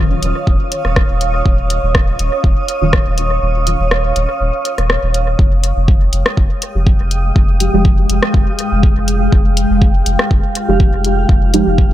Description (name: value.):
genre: dub techno.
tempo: 122 BPM.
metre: 4/4.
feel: swing 53% on 16ths.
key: F minor.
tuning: A4 = 438 Hz.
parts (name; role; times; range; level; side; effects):
granular cloud pad; sustained chords; 0.0-11.9 s; Ab3 to F6; -19 LUFS; right 1 dB; built-in reverb, sidechain pumping.
deep mellow chord stab; stabs; 0.0-3.8, 6.8-11.6 s; Eb3 to G4; -19 LUFS; right 1 dB; chorus, phaser, sidechain pumping, dub echo.
soft dub sub bass; bass; 0.0-11.9 s; Eb1 to F1; -16 LUFS; equal; sidechain pumping.
deep house drum kit; drums; 0.2-11.6 s; hi-hat, rim click; -19 LUFS; left 1 dB; dub echo.
electronic kick drum; drums; 0.5-11.9 s; none; -12 LUFS; equal; none.
room: digital ambience.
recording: none.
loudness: -11 LUFS.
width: side -13 dB against mid.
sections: 0.0-5.4 A section; 5.4-11.9 A section.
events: kick drops out 3.4-5.4; filter sweep on synth stab 5.4-11.9.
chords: 0.0 Ebm9; 5.4 Fm9.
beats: 0.47 0.96 | 1.46 1.95 2.44 2.93 | 3.42 3.91 4.41 4.90 | 5.39 5.88 6.37 6.87 | 7.36 7.85 8.34 8.83 | 9.32 9.82 10.31 10.80 | 11.29 11.78.